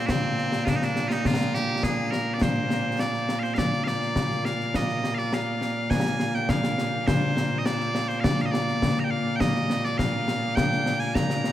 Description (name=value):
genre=scottish traditional, Scottish pipe music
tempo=103 BPM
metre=4/4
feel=straight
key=Bb mixolydian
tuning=A4 = 439 Hz
part: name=loud bright bagpipes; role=melody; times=0.0-11.5 s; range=Bb2 to Bb5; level=-25 LUFS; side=equal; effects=none
part: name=concert snare drum and concert bass drum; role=drums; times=0.1-11.5 s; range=none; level=-26 LUFS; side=left 1 dB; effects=none
room=moderate huge ambient reverb, RT60 7.2 s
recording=heard from further back in the room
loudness=-23 LUFS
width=side -12 dB against mid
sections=0.0-2.4 A section; 2.4-11.5 B section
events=none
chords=none